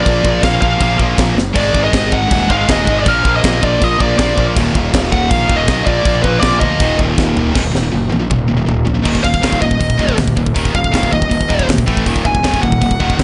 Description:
heavy metal; 160 BPM; 4/4; straight; Eb harmonic minor; A4 = 440 Hz
high-gain lead guitar; melody; 0.0-7.0, 9.2-13.2 s; Cb5 to Ab5; -19 LUFS; equal; distortion, digital delay
high-gain distorted guitar; riff; 0.0-13.2 s; Eb2 to Bb3; -20 LUFS; equal; distortion
fuzz fingered electric bass; bass; 0.0-13.2 s; Eb1 to D2; -21 LUFS; equal; overdrive
tight metal drum kit; drums; 0.1-13.2 s; crash cymbal, hi-hat, kick drum, snare drum, splash cymbal, toms; -19 LUFS; equal
light reverb; nothing above 10.4 kHz; -14 LUFS; mono
0.0-7.5 A section; 7.5-9.1 B section; 9.1-13.2 C section
drum fill 1.4, 7.2-7.5, 7.5-9.1; lead electric guitar solo 9.1-13.2
0.0 Bb; 1.6 Ab5; 3.1 Bb5; 4.6 Eb5; 5.9 Bb; 6.8 Eb5; 11.9 A5; 12.1 Ebm

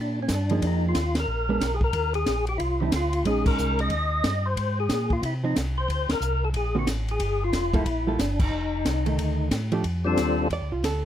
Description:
soul jazz organ trio; 182 BPM; 4/4; swing 63% on 8ths; A4 = 436 Hz
percussive tonewheel organ; melody; 0.0-10.5 s; G3 to Eb5; -27 LUFS; left 2 dB; slow rotary speaker, overdrive, chorus vibrato
mellow tonewheel organ; bass; 0.0-11.1 s; F1 to C3; -27 LUFS; equal; slow rotary speaker
compact cocktail drum kit; drums; 0.3-10.9 s; crash cymbal, hi-hat, kick drum, ride cymbal, snare drum; -30 LUFS; equal
hollow-body jazz guitar; accompaniment; 0.5-11.0 s; D3 to D5; -27 LUFS; right 4 dB
light reverb; close, detailed microphones; -22 LUFS; side -11 dB against mid
0.0-9.8 A section; 9.8-11.1 B section
band accent 1.1, 3.4, 6.1, 8.4; hollow-body jazz guitar solo 9.8-11.1
0.0 Bb; 0.6 Fm7; 1.3 Bb7b9; 1.9 Ebmaj7sus2; 3.3 Bbm11; 3.9 Eb; 4.6 Ab; 5.9 D7(no3); 7.2 Gm9; 8.5 F13; 9.8 F69

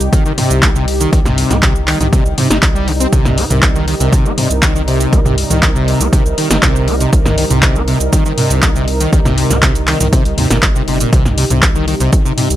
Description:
acid house; 120 BPM; 4/4; straight; C minor; A4 = 440 Hz
warm analog pad; sustained chords; 0.0-12.6 s; C3 to Bb4; -20 LUFS; right 1 dB; chorus, sidechain pumping
round analog bass; bass; 0.0-12.6 s; G1 to Eb2; -18 LUFS; equal; sidechain pumping
punchy analog drum machine; drums; 0.0-12.6 s; handclaps, hi-hat, shaker, snare drum, toms; -16 LUFS; equal; overdrive
overdriven acid bass; riff; 0.1-12.5 s; Bb2 to Eb4; -17 LUFS; equal; distortion, tube saturation, ensemble chorus, sidechain pumping, ping-pong delay
electronic kick drum; drums; 0.1-12.2 s; -13 LUFS; equal; overdrive
little or no reverb; -10 LUFS; side -13 dB against mid
0.0-12.6 A section
0.0 Cm

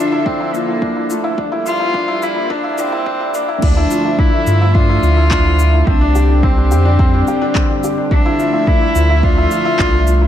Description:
piano and strings electronica; 107 BPM; 4/4; straight; D minor; A4 = 442 Hz
rich cello; melody; 0.0-10.3 s; A3 to F4; -19 LUFS; equal
lush unison pad; sustained chords; 0.0-10.3 s; D3 to E5; -22 LUFS; equal; chorus, sidechain pumping
felt-muted upright piano; riff; 0.0-10.3 s; C4 to G4; -19 LUFS; left 1 dB; ping-pong delay
electronic kick drum; drums; 0.3-9.9 s; -16 LUFS; equal; overdrive
deep house drum kit; drums; 0.5-10.2 s; crash cymbal, handclaps, shaker; -26 LUFS; left 1 dB; overdrive
warm sub bass; bass; 3.6-10.3 s; C2 to G2; -13 LUFS; equal; sidechain pumping
light reverb; dark, warm production, high-pass filter; -12 LUFS; side -10 dB against mid
0.0-3.6 A section; 3.6-10.3 B section
build-up 0.0-3.6; drop 3.6-10.3
0.0 Dmadd9; 1.4 Gm7; 3.6 Dmadd9; 5.9 Csus2; 8.1 Dmadd9

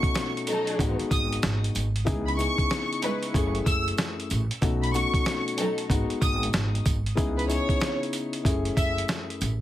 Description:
hip hop, boom-bap hip-hop; 94 BPM; 4/4; swing 62% on 16ths; C# minor; A4 = 439 Hz
warm symphonic violin section; melody; 0.0-8.9 s; B4 to E6; -31 LUFS; equal; ping-pong delay
dark grand piano; accompaniment; 0.0-9.5 s; F#2 to G#4; -30 LUFS; left 3 dB; cassette tape
dusty soul sampler-style drum kit; drums; 0.0-9.6 s; hi-hat, kick drum, snare drum; -27 LUFS; right 1 dB
sleigh bells; percussion; 0.1-9.6 s; -42 LUFS; right 7 dB
warm studio string section; stabs; 0.5-5.9 s; F#3 to B4; -30 LUFS; equal; ping-pong delay
upright bass; bass; 0.8-9.6 s; F#1 to C#2; -28 LUFS; right 1 dB
light reverb; heavily compressed radio sound; -24 LUFS; side -13 dB against mid
0.0-7.2 A section; 7.2-9.6 B section
0.0 B7; 0.8 G#m7; 2.1 C#m7; 3.3 F#m7; 4.6 B7; 5.9 G#m7; 7.2 C#m7; 8.5 F#m7

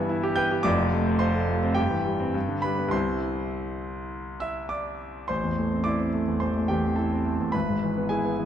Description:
classical, virtuoso piano study; 105 BPM; 4/4; uneven beats, rubato; C major, A minor from 5.3 s; A4 = 440 Hz
warm concert grand piano; solo; 0.0-8.5 s; F1 to G6; -24 LUFS; equal
moderate scoring stage reverb, RT60 1.8 s; dark, warm production; -24 LUFS; side -9 dB against mid
0.0-5.3 A section; 5.3-8.5 B section
0.0 Em/G; 0.7 Dm7/F; 1.8 C/G; 2.3 G; 2.9 C; 5.3 Am; 7.5 E/G#

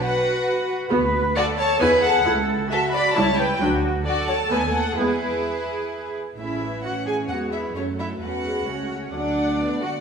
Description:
quick classical-period movement for string orchestra; 132 BPM; 3/4; straight; A major; A4 = 442 Hz
rich studio violin section; melody; 0.0-10.0 s; A4 to B5; -26 LUFS; left 2 dB
clear chamber violin section; second line; 0.0-10.0 s; E4 to G#5; -26 LUFS; left 1 dB
dark chamber cello section; bass; 0.0-9.9 s; C#4 to B4; -27 LUFS; right 2 dB
dark chamber viola section; accompaniment; 0.9-10.0 s; E3 to F#4; -26 LUFS; right 1 dB
dark chamber double bass section; bass; 0.9-10.0 s; A1 to D3; -30 LUFS; right 2 dB
moderate scoring stage reverb, RT60 1.7 s; studio reverb; -20 LUFS; side -6 dB against mid
0.0-6.4 A section; 6.4-10.0 B section
0.0 B5; 0.9 Bm7/D; 1.8 E; 2.3 A/C#; 3.2 A7/C#; 3.6 D; 4.5 B7/D#; 5.0 E; 6.4 A; 7.3 E; 7.8 F#m; 9.1 D

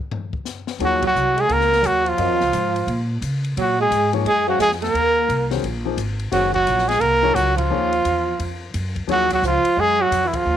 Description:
modal jazz; 174 BPM; 4/4; swing 63% on 8ths; Eb dorian; A4 = 440 Hz
open jazz drum kit; drums; 0.1-10.4 s; hi-hat, kick drum, ride cymbal, snare drum, toms; -32 LUFS; left 5 dB
warm trumpet; melody; 0.8-10.6 s; Fb4 to Bb4; -18 LUFS; equal
growling alto saxophone; second line; 0.8-10.6 s; Fb3 to Bb3; -25 LUFS; right 13 dB
warm grand piano; accompaniment; 0.8-9.3 s; Eb3 to F5; -26 LUFS; left 14 dB
upright bass; bass; 0.8-10.6 s; Gb1 to Db3; -25 LUFS; equal
studio reverb; 1960s-style stereo with parts hard left and right; -17 LUFS; side -10 dB against mid
0.8-10.6 A section
band accent 1.0, 7.5, 10.3
0.0 N.C.; 0.8 Ebm9

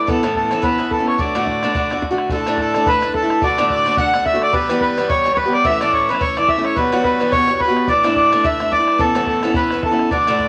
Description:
celtic folk, Celtic reel; 215 BPM; 4/4; swing 58% on 8ths; A4 = 439 Hz
accordion; melody; 0.0-10.5 s; A4 to F#5; -20 LUFS; equal
cimbalom; second line; 0.0-10.5 s; G4 to F#5; -26 LUFS; equal
dark fiddle; second line; 0.0-10.5 s; A4 to F#5; -30 LUFS; equal
picked acoustic archtop guitar; accompaniment; 0.0-10.5 s; D2 to G4; -22 LUFS; equal
bodhran; percussion; 0.1-10.5 s; -30 LUFS; equal
moderate club reverb, RT60 0.6 s; -17 LUFS; mono
0.0-2.3 A section; 2.3-10.5 A section
0.1 Aadd9; 1.2 D; 2.3 Asus4; 3.4 D; 4.5 Em; 5.7 A; 6.8 Emadd9; 7.9 Dsus2; 9.0 Aadd9

